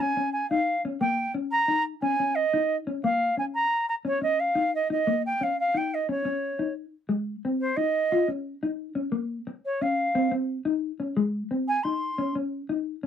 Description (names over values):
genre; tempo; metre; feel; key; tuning
highlife; 118 BPM (dotted quarters); 12/8; straight; unclear; A4 = 440 Hz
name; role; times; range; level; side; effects
silver concert flute; melody; 0.0-12.3 s; C5 to C6; -24 LUFS; right 2 dB; none
mellow electric guitar; accompaniment; 0.0-13.1 s; Ab3 to F4; -28 LUFS; left 3 dB; lush chorus
room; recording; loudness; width
light reverb; dry, close 1970s-style studio recording; -24 LUFS; side -9 dB against mid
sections
0.0-7.1 A section; 7.1-13.1 B section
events
flute solo 7.1-13.1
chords
0.0 Dbadd9; 1.0 Eb7; 2.0 Absus4; 3.0 Bbm; 4.1 Dbadd9; 5.1 Eb5; 6.1 Dbsus2; 7.1 Ab; 8.1 Ebsus2; 9.1 Bbm; 10.2 Cm; 11.2 Ab; 12.2 Dbsus2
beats
0.50 | 1.01 1.51 2.02 2.53 | 3.04 3.54 4.05 4.56 | 5.07 5.58 6.08 6.59 | 7.10 7.61 8.12 8.63 | 9.13 9.64 10.15 10.66 | 11.17 11.68 12.19 12.69